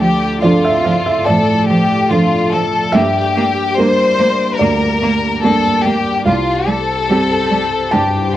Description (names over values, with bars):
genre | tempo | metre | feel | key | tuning
neoclassical piano and strings | 72 BPM | 4/4 | rubato | G dorian | A4 = 439 Hz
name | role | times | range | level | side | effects
rich chamber violin section | melody | 0.0-8.4 s | F4 to C5 | -16 LUFS | left 4 dB | cassette tape
warm cello | second line | 0.0-8.0 s | F3 to Bb3 | -18 LUFS | right 2 dB | cassette tape
felt-muted upright piano | accompaniment | 0.0-8.4 s | C2 to A5 | -16 LUFS | right 2 dB | cassette tape
airy breathy pad | sustained chords | 0.0-8.4 s | F3 to D5 | -24 LUFS | equal | chorus, cassette tape
room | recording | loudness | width
moderate booth ambience, RT60 0.2 s | home recording on cassette | -12 LUFS | side -13 dB against mid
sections
0.0-8.4 A section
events
none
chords
0.0 Dm; 2.9 Gm; 6.3 Csus4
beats
0.43 1.27 2.11 | 2.94 3.77 4.60 5.43 | 6.26 7.09 7.93